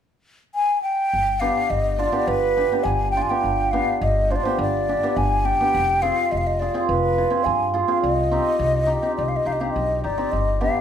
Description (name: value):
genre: klezmer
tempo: 104 BPM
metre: 4/4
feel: straight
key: G phrygian dominant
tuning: A4 = 440 Hz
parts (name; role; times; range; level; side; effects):
- mellow hollow concert flute; melody; 0.5-10.8 s; B4 to Ab5; -21 LUFS; left 1 dB; none
- upright bass; bass; 1.1-10.7 s; F1 to G2; -26 LUFS; equal; none
- cimbalom; accompaniment; 1.4-10.7 s; B3 to Ab4; -24 LUFS; right 2 dB; none
room: moderate large studio reverb, RT60 1.1 s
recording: band playing live in one room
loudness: -19 LUFS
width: side -8 dB against mid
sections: 0.0-1.1 A section; 1.1-10.8 B section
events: none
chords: 0.0 N.C.; 1.1 G; 5.7 Fm; 8.0 Cm